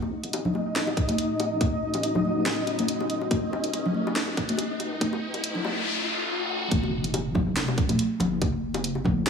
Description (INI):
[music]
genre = deep dubstep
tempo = 141 BPM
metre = 4/4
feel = swing 54% on 16ths, half-time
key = F# dorian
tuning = A4 = 441 Hz
[part]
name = dark analog pad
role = sustained chords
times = 0.0-6.7 s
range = A3 to F#4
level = -36 LUFS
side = equal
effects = chorus
[part]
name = deep soft wobble bass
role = bass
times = 0.0-9.3 s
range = E1 to C#2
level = -33 LUFS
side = equal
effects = chorus, high-pass filter
[part]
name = bongos and congas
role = percussion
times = 0.0-9.3 s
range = none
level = -28 LUFS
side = left 1 dB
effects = dub echo
[part]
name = riser and noise sweep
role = sound effects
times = 2.4-6.7 s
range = none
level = -32 LUFS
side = left 2 dB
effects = none
[part]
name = flickering grainy texture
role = texture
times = 0.2-5.9 s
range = D#4 to D#5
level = -31 LUFS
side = left 1 dB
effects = built-in reverb
[part]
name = garage drum kit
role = drums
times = 0.2-9.3 s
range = handclaps, hi-hat, snare drum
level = -30 LUFS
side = right 1 dB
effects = overdrive
[part]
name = electronic kick drum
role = drums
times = 1.0-9.1 s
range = none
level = -27 LUFS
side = equal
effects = none
[sound]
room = moderate lush hall reverb, RT60 2.0 s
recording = high-pass filter, small room ambience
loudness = -24 LUFS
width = side -6 dB against mid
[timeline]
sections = 0.0-6.7 A section; 6.7-9.3 B section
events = build-up 0.0-6.7; filter sweep on analog synth pad 0.0-6.7; filter sweep 0.0-6.7; riser 2.4-6.7; noise sweep 5.0-6.7; drop 6.7-9.3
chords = 0.0 F#m; 6.7 N.C.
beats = 0.33 0.76 1.18 | 1.61 2.03 2.46 2.88 | 3.31 3.74 4.16 4.59 | 5.01 5.44 5.86 6.29 | 6.71 7.14 7.57 7.99 | 8.42 8.84 9.27